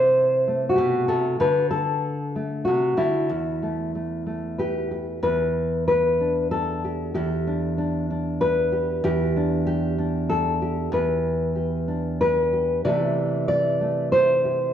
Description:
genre	folk, solo fingerstyle acoustic guitar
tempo	94 BPM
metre	3/4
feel	straight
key	E minor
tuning	A4 = 438 Hz
part	nylon-string guitar	solo	0.0-14.7 s	E2 to D5	-20 LUFS	equal	none
room	wet recital hall reverb, RT60 1.5 s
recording	worn, warbling old tape, cassette tape, warbly pitch drift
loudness	-21 LUFS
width	side -9 dB against mid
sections	0.0-5.2 A section; 5.2-14.7 A section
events	none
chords	0.0 C6; 1.4 D; 3.3 Em; 5.2 Em7; 12.9 C6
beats	0.14 0.77 | 1.39 2.02 2.65 | 3.29 3.93 4.58 | 5.23 5.87 6.51 | 7.15 7.78 8.41 | 9.04 9.67 10.30 | 10.93 11.57 12.21 | 12.85 13.49 14.13

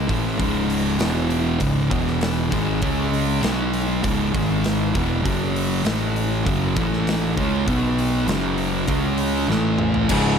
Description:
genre	stoner and doom metal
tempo	99 BPM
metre	4/4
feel	straight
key	C# minor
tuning	A4 = 440 Hz
part	thick fuzz guitar	riff	0.0-10.4 s	C#2 to C#4	-24 LUFS	left 10 dB	distortion
part	thick fuzz guitar	riff	0.0-10.4 s	C#2 to C#4	-23 LUFS	right 10 dB	distortion
part	fuzz picked electric bass	bass	0.0-10.4 s	C#1 to C#2	-26 LUFS	equal	overdrive
part	big rock drum kit	drums	0.1-10.2 s	crash cymbal, hi-hat, kick drum, snare drum, toms	-27 LUFS	equal	none
part	biting overdriven guitar	riff	10.1-10.4 s	C#2 to C#3	-20 LUFS	left 1 dB	none
room	light reverb, studio reverb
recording	none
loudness	-19 LUFS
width	side -7 dB against mid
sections	0.0-10.1 A section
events	drum fill 9.5-10.1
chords	0.1 A5; 0.4 C#5; 1.0 E5; 1.6 C#5; 1.9 E5; 2.5 C#5; 3.4 B5; 4.0 C#5; 4.3 G#5; 4.9 E5; 5.2 F#5; 5.9 A5; 6.5 F#5; 6.8 A5; 7.4 C#5; 7.7 B5; 8.3 F#5; 8.9 C#5; 9.5 A5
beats	| 0.40 1.00 1.61 2.22 | 2.82 3.43 4.04 4.64 | 5.25 5.86 6.46 7.07 | 7.68 8.29 8.89 9.50 | 10.11

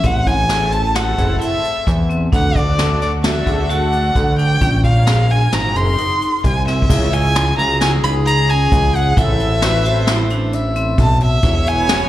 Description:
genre	progressive instrumental, band music in an uneven meter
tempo	132 BPM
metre	5/4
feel	straight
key	unclear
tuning	A4 = 441 Hz
part	warm violin	melody	0.0-12.1 s	D5 to B#5	-19 LUFS	equal	slapback echo
part	vibraphone with hard mallets	arpeggios	0.0-12.0 s	C4 to A4	-26 LUFS	equal	slapback echo
part	fat analog bass	bass	0.0-12.1 s	E1 to E2	-17 LUFS	equal	none
part	jazz brush drum kit	drums	0.0-12.0 s	crash cymbal, hi-hat, kick drum, snare drum	-19 LUFS	equal	none
part	lush unison pad	accompaniment	0.5-11.8 s	A3 to C#5	-28 LUFS	equal	chorus, slapback echo
part	clear alto saxophone	second line	6.9-12.1 s	G#4 to E5	-25 LUFS	left 3 dB	slapback echo
room	light reverb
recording	live gig heard through the venue's PA, recital hall reverb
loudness	-13 LUFS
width	side -14 dB against mid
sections	0.0-6.9 A section; 6.9-12.1 B section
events	drum fill 6.7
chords	0.0 Am; 2.3 D; 4.6 A#m; 5.5 G#7; 6.9 C#m; 9.2 Amadd9; 11.4 E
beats	| 0.05 0.50 0.96 1.42 1.88 | 2.33 2.79 3.25 3.71 4.16 | 4.62 5.08 5.53 5.99 6.44 | 6.90 7.36 7.81 8.27 8.72 | 9.17 9.63 10.08 10.54 10.99 | 11.44 11.90

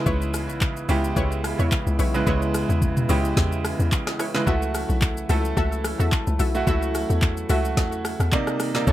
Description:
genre	amapiano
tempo	109 BPM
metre	4/4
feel	swing 55% on 16ths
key	unclear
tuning	A4 = 441 Hz
part	bright baby grand piano	accompaniment	0.0-8.9 s	B2 to E5	-26 LUFS	right 2 dB	none
part	warm French horn section	sustained chords	0.0-8.9 s	C3 to E4	-32 LUFS	left 1 dB	sidechain pumping
part	analog pluck	stabs	0.1-8.9 s	D4 to E5	-31 LUFS	left 2 dB	chorus, digital delay
part	hollow log drum bass	bass	0.1-8.9 s	B1 to E2	-24 LUFS	equal	none
part	smooth R&B drum kit	drums	0.1-8.9 s	handclaps, hi-hat, kick drum, rim click, shaker, snare drum, toms	-25 LUFS	equal	none
room	little or no reverb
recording	none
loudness	-20 LUFS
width	side -14 dB against mid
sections	0.0-8.9 A section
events	none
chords	0.0 C#m7; 4.5 F#m7; 8.3 Cm9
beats	| 0.07 0.62 1.17 1.72 | 2.27 2.82 3.37 3.92 | 4.47 5.02 5.57 6.12 | 6.67 7.22 7.77 8.32 | 8.87

